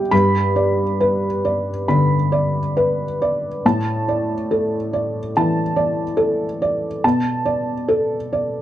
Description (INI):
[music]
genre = neoclassical minimalist piano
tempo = 70 BPM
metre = 4/4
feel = rubato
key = unclear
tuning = A4 = 440 Hz
[part]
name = felt-muted upright piano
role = solo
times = 0.0-8.6 s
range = G2 to G6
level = -17 LUFS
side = equal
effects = none
[sound]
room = light reverb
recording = dark, warm production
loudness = -17 LUFS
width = side -12 dB against mid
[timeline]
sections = 0.1-8.6 A section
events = none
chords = 0.1 G; 3.6 Dsus2/A; 7.0 Gadd9/B (rootless)